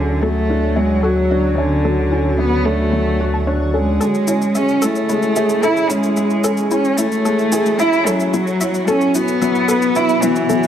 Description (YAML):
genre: piano and strings electronica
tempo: 111 BPM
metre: 4/4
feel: straight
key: A major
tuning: A4 = 440 Hz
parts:
  - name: dark cello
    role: melody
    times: 0.0-10.7 s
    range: D3 to E4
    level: -17 LUFS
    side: right 1 dB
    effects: none
  - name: granular cloud pad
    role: sustained chords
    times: 0.0-10.7 s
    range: D3 to E5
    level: -24 LUFS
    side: left 1 dB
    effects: built-in reverb
  - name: analog pluck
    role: arpeggios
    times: 0.0-10.6 s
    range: E4 to A5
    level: -25 LUFS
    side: left 2 dB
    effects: chorus, tape echo
  - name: felt-muted upright piano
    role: riff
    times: 0.0-10.7 s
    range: F#3 to B4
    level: -20 LUFS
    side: left 2 dB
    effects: tape echo
  - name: warm sub bass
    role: bass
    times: 0.0-4.0 s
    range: D2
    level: -20 LUFS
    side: equal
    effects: none
  - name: shaker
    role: drums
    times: 4.0-10.7 s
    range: none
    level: -28 LUFS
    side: left 2 dB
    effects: overdrive, low-pass filter on perc
room: moderate scoring stage reverb, RT60 2.0 s, small room ambience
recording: none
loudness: -14 LUFS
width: side -9 dB against mid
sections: 0.0-4.0 A section; 4.0-10.7 B section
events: build-up 4.0-10.7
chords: 0.0 Dmaj7; 4.0 Amaj7; 8.3 Esus2